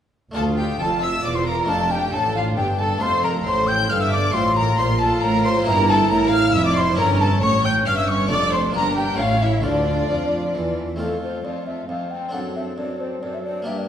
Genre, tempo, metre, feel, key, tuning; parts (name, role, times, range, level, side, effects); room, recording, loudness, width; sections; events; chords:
classical, baroque-style concerto movement with solo episodes; 136 BPM; 3/4; straight; D minor; A4 = 439 Hz
harpsichord; accompaniment; 0.3-13.9 s; D2 to A4; -28 LUFS; left 1 dB
mellow hollow concert flute; melody; 0.4-13.9 s; A4 to G6; -23 LUFS; left 1 dB
rich chamber violin section; melody; 0.4-13.9 s; G4 to G6; -28 LUFS; left 4 dB
rich chamber violin section; second line; 0.4-13.9 s; D4 to G5; -27 LUFS; left 1 dB
warm chamber viola section; accompaniment; 0.4-13.9 s; Bb3 to A4; -27 LUFS; right 3 dB
rich chamber double bass section; bass; 0.4-11.0 s; E1 to F2; -26 LUFS; right 1 dB
warm symphonic cello section; bass; 0.4-13.9 s; D2 to F3; -26 LUFS; right 1 dB
wet recital hall reverb, RT60 1.6 s; recorded in a church or concert hall, lossy compression artefacts; -18 LUFS; side -9 dB against mid
0.4-11.0 A section; 11.0-13.9 B section
0.4 Dm; 1.7 Dm/F; 3.0 F; 4.3 F/A; 5.7 Edim/G; 7.0 A7/G; 8.3 Dm/F; 8.7 Gm; 9.2 A; 9.6 Dm; 11.0 F; 12.3 D7/F#